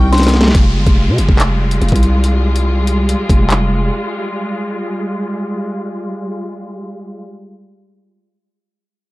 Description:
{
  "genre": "hip hop, drill",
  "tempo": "142 BPM",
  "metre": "4/4",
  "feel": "half-time",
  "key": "F minor",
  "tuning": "A4 = 439 Hz",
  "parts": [
    { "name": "small celesta", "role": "melody", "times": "0.0-0.5 s", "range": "C6 to Db6", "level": "-23 LUFS", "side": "left 3 dB", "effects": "analog delay" },
    { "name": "rich symphonic string section", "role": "sustained chords", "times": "0.0-7.3 s", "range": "C3 to F4", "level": "-20 LUFS", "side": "equal", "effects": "low-pass filter" },
    { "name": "growling 808-style bass", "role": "bass", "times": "0.0-3.9 s", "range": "F1 to C3", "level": "-14 LUFS", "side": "equal", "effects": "none" },
    { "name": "drill drum kit", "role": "drums", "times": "0.1-3.6 s", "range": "handclaps, hi-hat, kick drum, snare drum", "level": "-13 LUFS", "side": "equal", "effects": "none" },
    { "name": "downlifter", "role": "sound effects", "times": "0.5-3.9 s", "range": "none", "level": "-29 LUFS", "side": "equal", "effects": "none" }
  ],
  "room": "small room ambience",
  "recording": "dry, gritty hardware recording",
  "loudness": "-12 LUFS",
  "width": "side -20 dB against mid",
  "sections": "0.5-7.3 A section",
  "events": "drum fill 0.1-0.5; filter sweep on string section 0.5-7.3",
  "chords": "0.0 Cm; 0.5 Fmadd9"
}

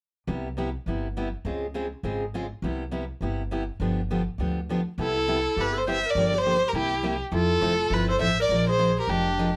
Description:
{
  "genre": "acoustic string swing (jazz manouche)",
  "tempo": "205 BPM",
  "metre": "4/4",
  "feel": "swing 59% on 8ths",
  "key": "C major",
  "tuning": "A4 = 439 Hz",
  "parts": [
    { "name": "picked steel-string acoustic guitar", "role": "accompaniment", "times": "0.3-9.5 s", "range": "C3 to Bb4", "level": "-31 LUFS", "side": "equal", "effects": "none" },
    { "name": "upright bass", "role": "bass", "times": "0.3-9.5 s", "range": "F1 to F2", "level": "-34 LUFS", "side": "equal", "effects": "none" },
    { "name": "warm violin", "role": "melody", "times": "5.0-9.6 s", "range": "G4 to E5", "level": "-26 LUFS", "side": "equal", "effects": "none" },
    { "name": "bright clarinet", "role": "second line", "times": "5.0-9.6 s", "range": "D4 to C5", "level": "-34 LUFS", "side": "equal", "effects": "none" }
  ],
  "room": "light reverb",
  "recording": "none",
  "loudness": "-26 LUFS",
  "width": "mono",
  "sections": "0.3-5.0 A section; 5.0-9.6 B section",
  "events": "none",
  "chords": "0.3 Cmaj7; 1.5 Dbmaj7; 2.6 Cmaj7; 3.8 G7; 5.0 Cmaj7; 6.2 Gm7; 6.7 C7; 7.3 Fmaj7; 8.5 Bb7"
}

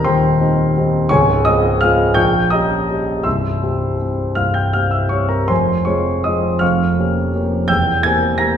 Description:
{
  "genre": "classical, romantic character piece for solo piano",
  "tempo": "55 BPM (dotted quarters)",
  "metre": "6/8",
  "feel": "uneven beats, rubato",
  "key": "unclear",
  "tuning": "A4 = 440 Hz",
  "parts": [
    { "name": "warm grand piano", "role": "solo", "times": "0.0-8.6 s", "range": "C1 to Bb6", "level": "-14 LUFS", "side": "equal", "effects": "none" }
  ],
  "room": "wet recital hall reverb, RT60 1.6 s",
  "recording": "recorded in a church or concert hall",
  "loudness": "-14 LUFS",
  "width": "side -8 dB against mid",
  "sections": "0.0-8.6 A section",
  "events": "none",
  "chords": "0.0 Cm/Eb; 1.1 Dbmaj7; 2.2 Gdim/Bb; 3.3 C; 5.5 Fm; 6.6 Gm7b5/F; 7.7 C7/E"
}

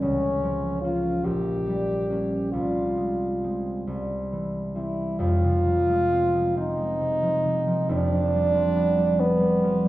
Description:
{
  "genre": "classical, romantic duo for French horn and harp",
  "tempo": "43-50 BPM (dotted quarters)",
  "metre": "6/8",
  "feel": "rubato",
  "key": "F minor",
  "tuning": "A4 = 441 Hz",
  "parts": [
    { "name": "warm French horn", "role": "melody", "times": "0.0-9.9 s", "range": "B3 to G4", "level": "-24 LUFS", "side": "equal", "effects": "none" },
    { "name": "concert harp", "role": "accompaniment", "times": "0.0-9.9 s", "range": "F1 to Db4", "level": "-25 LUFS", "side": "equal", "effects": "none" }
  ],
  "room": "wet recital hall reverb, RT60 1.4 s",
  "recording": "recorded in a church or concert hall",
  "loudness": "-22 LUFS",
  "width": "side -15 dB against mid",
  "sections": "0.0-5.2 A section; 5.2-9.9 B section",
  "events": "none",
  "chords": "0.0 Db6; 1.2 Gdim/Bb; 2.5 Fm/C; 3.9 C; 5.2 Fm; 7.9 G7/F"
}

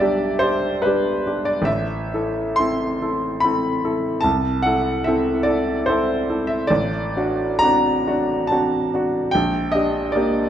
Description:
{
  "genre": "classical, romantic nocturne for solo piano",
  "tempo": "62-76 BPM",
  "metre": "3/4",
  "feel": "rubato",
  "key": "unclear",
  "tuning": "A4 = 439 Hz",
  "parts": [
    { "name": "warm grand piano", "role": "solo", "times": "0.0-10.5 s", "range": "A1 to C6", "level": "-18 LUFS", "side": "equal", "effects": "none" }
  ],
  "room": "wet recital hall reverb, RT60 1.4 s",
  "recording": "none",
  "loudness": "-18 LUFS",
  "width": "side -10 dB against mid",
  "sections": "0.0-10.5 A section",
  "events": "none",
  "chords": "0.0 G/B; 1.7 Am; 4.2 Am/C; 6.7 D7/A; 9.3 Gm/Bb"
}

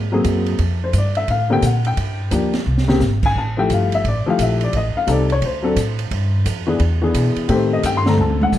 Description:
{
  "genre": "jazz piano trio",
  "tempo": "174 BPM",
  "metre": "4/4",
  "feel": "swing 64% on 8ths",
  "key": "unclear",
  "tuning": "A4 = 440 Hz",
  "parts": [
    { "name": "upright bass", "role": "bass", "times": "0.0-8.6 s", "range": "G1 to B2", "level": "-19 LUFS", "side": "equal", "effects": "none" },
    { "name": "warm upright piano", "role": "melody", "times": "0.1-8.5 s", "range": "C#3 to C6", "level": "-19 LUFS", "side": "left 3 dB", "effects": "none" },
    { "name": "open jazz drum kit", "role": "drums", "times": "0.2-8.6 s", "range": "crash cymbal, hi-hat, kick drum, ride cymbal, snare drum, toms", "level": "-26 LUFS", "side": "right 3 dB", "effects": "none" }
  ],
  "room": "light reverb",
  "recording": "dark, warm production",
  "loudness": "-16 LUFS",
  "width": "side -12 dB against mid",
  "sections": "0.0-8.6 A section",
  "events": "drum fill 2.7-3.0, 8.2-8.6",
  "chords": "0.0 Ab9; 0.6 Bb6; 2.0 Gm7; 2.7 C5; 3.4 Fmaj9; 4.7 Am7b5; 5.4 D7(no3); 6.1 G7sus4; 6.8 E7; 7.5 Am7b5"
}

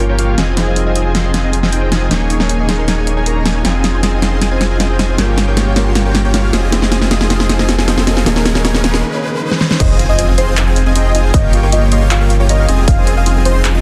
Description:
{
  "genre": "future bass",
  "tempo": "156 BPM",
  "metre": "4/4",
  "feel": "half-time",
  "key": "F minor",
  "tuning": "A4 = 440 Hz",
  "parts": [
    { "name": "felt-muted upright piano", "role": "accompaniment", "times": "0.0-9.8 s", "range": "Eb3 to Bb4", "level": "-26 LUFS", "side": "equal", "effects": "sidechain pumping, tape echo" },
    { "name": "shimmering ambient pad", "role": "sustained chords", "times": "0.1-13.8 s", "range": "Eb3 to Bb4", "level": "-31 LUFS", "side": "equal", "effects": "none" },
    { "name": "soft round pluck", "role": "arpeggios", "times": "0.0-13.8 s", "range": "Eb4 to Bb5", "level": "-29 LUFS", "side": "equal", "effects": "none" },
    { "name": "dense compressed supersaw", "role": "riff", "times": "0.0-13.8 s", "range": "Bb3 to C6", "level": "-22 LUFS", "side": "equal", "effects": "sidechain pumping, low-pass filter" },
    { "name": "saturated sub bass", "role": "bass", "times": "0.0-13.8 s", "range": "Eb1 to G1", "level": "-17 LUFS", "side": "equal", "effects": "sidechain pumping" },
    { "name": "riser and impact", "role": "sound effects", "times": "4.9-11.3 s", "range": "none", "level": "-28 LUFS", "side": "equal", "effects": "none" },
    { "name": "big-room dance drum kit", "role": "drums", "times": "0.2-13.7 s", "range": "crash cymbal, handclaps, hi-hat, snare drum", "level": "-19 LUFS", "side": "equal", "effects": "none" },
    { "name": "warm velvety synth lead", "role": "melody", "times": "9.8-13.6 s", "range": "C5 to F5", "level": "-23 LUFS", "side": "equal", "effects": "chorus, sidechain pumping" },
    { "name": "electronic kick drum", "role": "drums", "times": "9.8-13.0 s", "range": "none", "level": "-15 LUFS", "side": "equal", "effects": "none" }
  ],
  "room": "light reverb",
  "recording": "dense, heavily limited modern master",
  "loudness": "-14 LUFS",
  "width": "mono",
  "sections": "0.0-9.8 A section; 9.8-13.8 B section",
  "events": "build-up 0.0-9.8; drum fill 0.0-9.0, 9.5; break 9.0-9.8; drop 9.8-13.8; impact 9.8-11.3",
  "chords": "0.4 Fm7; 2.1 Eb7sus4; 3.6 Fm7; 5.2 Gm7b5; 6.5 Fm7; 8.3 Eb7sus4; 9.8 Fm7; 11.3 Gm7b5; 12.7 Fm7"
}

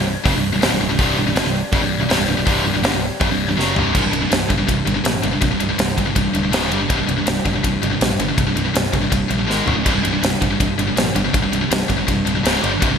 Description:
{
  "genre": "heavy metal",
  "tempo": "162 BPM",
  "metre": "4/4",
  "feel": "straight",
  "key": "unclear",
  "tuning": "A4 = 437 Hz",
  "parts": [
    { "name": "heavy high-gain guitar", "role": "riff", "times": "0.0-13.0 s", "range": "C2 to Ab3", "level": "-21 LUFS", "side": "left 11 dB", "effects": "distortion" },
    { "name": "scooped high-gain guitar", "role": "riff", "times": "0.0-13.0 s", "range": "C2 to Ab3", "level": "-21 LUFS", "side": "right 9 dB", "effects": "distortion" },
    { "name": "picked electric bass", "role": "bass", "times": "0.0-12.9 s", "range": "C1 to Bb1", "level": "-24 LUFS", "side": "equal", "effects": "none" },
    { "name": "modern studio drum kit", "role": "drums", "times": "0.3-12.9 s", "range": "crash cymbal, hi-hat, kick drum, ride cymbal, snare drum, toms", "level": "-21 LUFS", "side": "equal", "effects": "gated reverb" },
    { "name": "pipe organ, stopped flute", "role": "sustained chords", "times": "1.0-13.0 s", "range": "C3 to D5", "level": "-32 LUFS", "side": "left 2 dB", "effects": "none" }
  ],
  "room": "moderate lush hall reverb, RT60 1.9 s, studio reverb",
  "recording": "bright 1980s-style digital production, faint mains hum",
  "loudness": "-16 LUFS",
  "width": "side -7 dB against mid",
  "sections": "0.0-3.9 A section; 3.9-13.0 B section",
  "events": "drum fill 3.6-3.9, 9.5-9.9",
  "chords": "0.0 C5; 6.5 Db5; 6.7 G5; 6.9 C5; 9.5 Ab5; 9.7 Db5; 9.9 C5; 12.4 Db5; 12.6 G5"
}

